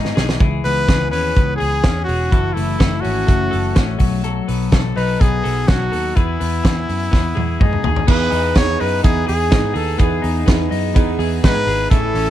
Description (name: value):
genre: jangly indie pop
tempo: 125 BPM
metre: 4/4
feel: straight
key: E major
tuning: A4 = 440 Hz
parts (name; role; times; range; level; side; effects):
- twelve-string electric guitar; arpeggios; 0.0-12.3 s; E3 to A4; -24 LUFS; left 6 dB; none
- vintage muted picked electric bass; bass; 0.0-12.3 s; E1 to G#2; -21 LUFS; equal; none
- loose indie drum kit; drums; 0.0-12.3 s; crash cymbal, hi-hat, kick drum, ride cymbal, snare drum, toms; -17 LUFS; equal; none
- bright trumpet; melody; 0.6-12.3 s; E4 to C#5; -21 LUFS; equal; none
- chorused retro synth keys; accompaniment; 8.1-12.3 s; A3 to G#5; -23 LUFS; right 8 dB; none
room: light reverb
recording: dark, warm production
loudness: -14 LUFS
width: side -12 dB against mid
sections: 0.0-8.1 A section; 8.1-12.3 B section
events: drum fill 0.0-0.4, 7.1-8.1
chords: 0.4 C#m7; 2.3 F#m7; 4.0 B7; 6.2 Emaj7